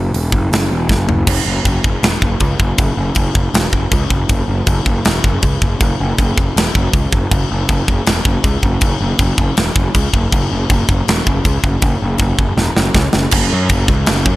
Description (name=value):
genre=heavy metal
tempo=159 BPM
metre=4/4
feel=straight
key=unclear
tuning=A4 = 438 Hz
part: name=fuzz picked electric bass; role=bass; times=0.0-14.4 s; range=E1 to F#2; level=-16 LUFS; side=equal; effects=overdrive
part: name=tight metal drum kit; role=drums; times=0.1-14.3 s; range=crash cymbal, hi-hat, kick drum, snare drum, toms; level=-15 LUFS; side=equal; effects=none
room=little or no reverb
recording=none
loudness=-12 LUFS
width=side -18 dB against mid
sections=0.0-1.3 A section; 1.3-13.3 B section; 13.3-14.4 C section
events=drum fill 0.9-1.3, 12.6-13.3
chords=none